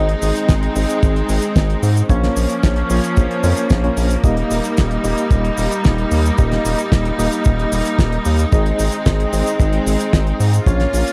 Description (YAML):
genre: italo disco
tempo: 112 BPM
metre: 4/4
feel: straight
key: Ab major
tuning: A4 = 442 Hz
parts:
  - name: clear symphonic string section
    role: sustained chords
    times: 0.0-11.1 s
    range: F3 to F4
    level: -24 LUFS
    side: equal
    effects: none
  - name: mellow tine electric piano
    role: stabs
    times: 0.0-11.1 s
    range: Bb3 to Eb5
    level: -24 LUFS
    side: equal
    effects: medium tremolo, tape echo
  - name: round analog bass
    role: bass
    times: 0.0-11.0 s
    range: Eb1 to Ab2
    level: -21 LUFS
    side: equal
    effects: none
  - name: damped 70s drum kit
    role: drums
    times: 0.1-11.1 s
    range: cabasa, hi-hat, snare drum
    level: -25 LUFS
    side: equal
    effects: none
  - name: kick drum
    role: drums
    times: 0.5-10.8 s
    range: none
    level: -17 LUFS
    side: equal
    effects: none
room: little or no reverb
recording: dry, close 1970s-style studio recording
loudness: -17 LUFS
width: mono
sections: 0.0-11.1 A section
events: none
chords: 0.0 Ab; 2.1 Bbm; 4.2 Eb; 8.5 Ab